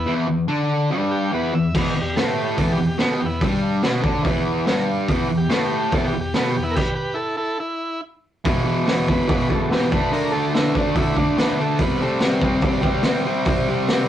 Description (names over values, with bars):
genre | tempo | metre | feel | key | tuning
garage rock duo or trio | 144 BPM | 4/4 | straight | E minor | A4 = 440 Hz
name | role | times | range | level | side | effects
overdriven combo organ | melody | 0.0-13.0 s | G3 to E5 | -26 LUFS | right 1 dB | none
fuzz guitar | riff | 0.0-14.1 s | E2 to D4 | -20 LUFS | equal | distortion
raw garage drum kit | drums | 1.7-14.0 s | crash cymbal, hi-hat, kick drum, snare drum | -22 LUFS | equal | none
room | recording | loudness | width
moderate studio reverb, RT60 0.5 s | rough rehearsal-room recording, warm saturation, cassette tape | -18 LUFS | side -11 dB against mid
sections
0.0-8.4 A section; 8.4-14.1 B section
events
stop 6.8-8.4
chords
0.0 Em; 8.4 E5; 9.9 D5; 11.8 C5